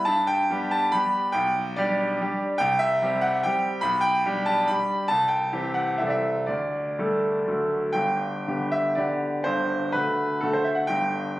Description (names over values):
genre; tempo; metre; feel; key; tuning
classical, romantic triple-time dance for piano with dotted rhythms; 112-153 BPM; 3/4; rubato; G major; A4 = 440 Hz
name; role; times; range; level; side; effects
bright concert grand piano; solo; 0.0-11.4 s; G1 to B5; -22 LUFS; equal; none
room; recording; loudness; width
wet recital hall reverb, RT60 1.3 s; recorded on a phone in the room, studio reverb, compression; -22 LUFS; side -16 dB against mid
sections
0.0-8.0 A section; 8.0-11.4 B section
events
none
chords
0.1 G; 1.3 G/B; 2.6 C; 3.8 G/B; 5.1 C; 6.0 Am/C; 6.5 Dsus4; 7.5 D; 8.0 G; 9.5 D7/G; 10.9 N.C.